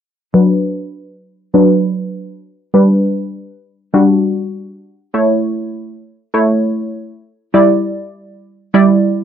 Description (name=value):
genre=pop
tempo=100 BPM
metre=4/4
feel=straight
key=B minor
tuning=A4 = 441 Hz
part: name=analog pluck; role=accompaniment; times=0.3-9.2 s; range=F#3 to D5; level=-11 LUFS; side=equal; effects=chorus, low-pass filter
room=light reverb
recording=dry, close 1970s-style studio recording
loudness=-12 LUFS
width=side -9 dB against mid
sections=0.3-9.2 A section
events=filter sweep on synth pluck 0.3-9.2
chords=0.3 Bm; 2.7 G; 5.1 A; 7.5 Em7